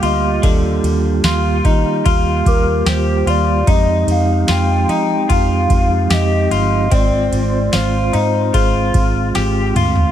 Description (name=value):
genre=dream pop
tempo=74 BPM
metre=4/4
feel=straight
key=Eb major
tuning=A4 = 440 Hz
part: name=warbly nostalgic lead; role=melody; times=0.0-9.8 s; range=Bb4 to G5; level=-22 LUFS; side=left 1 dB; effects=chorus, ping-pong delay
part: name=percussive tonewheel organ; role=sustained chords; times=0.0-10.1 s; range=F3 to G4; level=-20 LUFS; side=right 3 dB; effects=fast rotary speaker
part: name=electric guitar through a small old amp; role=arpeggios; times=0.0-10.1 s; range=D3 to G4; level=-20 LUFS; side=left 3 dB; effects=wide subtle chorus, ping-pong delay
part: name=vintage muted fingered electric bass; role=bass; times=0.0-10.1 s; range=G1 to F3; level=-18 LUFS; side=equal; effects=none
part: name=booming analog drum machine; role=drums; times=0.0-10.1 s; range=kick drum, ride cymbal, snare drum, tambourine, toms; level=-17 LUFS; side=equal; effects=overdrive
part: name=celesta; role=texture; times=0.0-9.9 s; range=Ab4 to D6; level=-32 LUFS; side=left 2 dB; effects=none
room=light reverb, digital ambience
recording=none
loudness=-13 LUFS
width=side -10 dB against mid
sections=0.0-10.1 A section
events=drum fill 9.3-10.1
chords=0.0 Ebmaj7; 3.7 Fm7; 6.9 Ab6